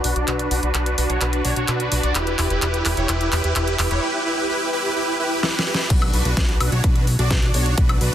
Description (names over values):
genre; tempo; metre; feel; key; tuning
EDM, festival progressive house; 128 BPM; 4/4; straight; B minor; A4 = 440 Hz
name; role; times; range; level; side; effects
supersaw chords; riff; 0.0-8.1 s; D4 to D5; -22 LUFS; right 1 dB; wide subtle chorus, sidechain pumping, low-pass filter, tape echo
fat analog bass; bass; 0.0-8.1 s; E1 to B1; -22 LUFS; equal; sidechain pumping
pop drum kit; drums; 0.0-8.1 s; crash cymbal, handclaps, hi-hat, snare drum, woodblock; -25 LUFS; equal; overdrive
electronic kick drum; drums; 5.9-7.9 s; none; -19 LUFS; equal; none
room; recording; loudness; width
moderate huge ambient reverb, RT60 8.5 s; dense, heavily limited modern master; -18 LUFS; side -11 dB against mid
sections
0.0-5.9 A section; 5.9-8.1 B section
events
build-up 0.0-5.9; drum fill 0.0-4.0, 5.4-5.9; filter sweep on supersaw synth 0.0-5.9; drop 5.9-8.1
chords
0.0 Bm; 2.2 Em; 5.9 Bm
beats
| 0.28 0.75 1.22 1.68 | 2.15 2.62 3.09 3.56 | 4.03 4.50 4.96 5.43 | 5.90 6.37 6.84 7.31 | 7.78